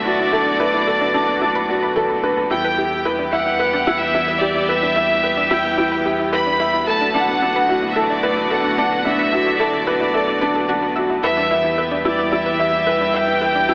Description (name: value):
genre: piano and strings electronica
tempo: 110 BPM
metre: 4/4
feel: straight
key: E minor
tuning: A4 = 440 Hz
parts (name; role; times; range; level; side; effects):
- clear chamber violin section; melody; 0.0-13.7 s; D5 to B5; -19 LUFS; equal; analog delay
- rich chamber string section; sustained chords; 0.0-13.7 s; D3 to G4; -24 LUFS; equal; none
- clear upright piano; riff; 0.0-13.7 s; D4 to E5; -19 LUFS; equal; analog delay
- warm sub bass; bass; 0.0-13.7 s; B1 to E2; -38 LUFS; equal; none
- analog pluck; arpeggios; 0.1-13.7 s; E3 to E5; -26 LUFS; equal; chorus, analog delay
room: wet lush hall reverb, RT60 2.6 s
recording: dreamy mix soaked in reverb, AM radio sound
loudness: -15 LUFS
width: side -34 dB against mid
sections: 0.0-13.7 A section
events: none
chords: 0.0 Bm7; 2.5 Em; 6.9 Bm7; 11.2 Em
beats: | 0.32 0.87 1.42 1.96 | 2.51 3.05 3.60 4.14 | 4.69 5.23 5.78 6.32 | 6.87 7.42 7.96 8.51 | 9.05 9.60 10.14 10.69 | 11.23 11.78 12.32 12.87 | 13.41